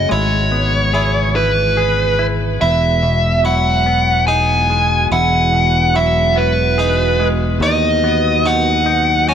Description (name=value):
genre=post-rock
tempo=48 BPM (dotted quarters)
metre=6/8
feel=straight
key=E major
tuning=A4 = 441 Hz
part: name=dark smooth lead guitar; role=melody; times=0.0-9.3 s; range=B4 to G#5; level=-15 LUFS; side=right 1 dB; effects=overdrive, tape echo
part: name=deep dark ambient pad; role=sustained chords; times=0.0-9.3 s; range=D#3 to G#4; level=-25 LUFS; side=right 2 dB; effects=chorus, built-in reverb
part: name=harpsichord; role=arpeggios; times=0.0-9.3 s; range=C#4 to E4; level=-26 LUFS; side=right 4 dB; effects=tape echo
part: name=semi-hollow electric guitar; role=arpeggios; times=0.0-9.3 s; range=E2 to G#4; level=-23 LUFS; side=left 4 dB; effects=tape echo
part: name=modern bright fingered electric bass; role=bass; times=0.0-9.3 s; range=E1 to D#2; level=-18 LUFS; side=equal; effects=none
room=light reverb, digital ambience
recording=none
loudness=-12 LUFS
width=side -8 dB against mid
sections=0.0-2.6 A section; 2.6-9.3 B section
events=none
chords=0.1 E/G#; 2.6 Eadd9; 7.6 B/D#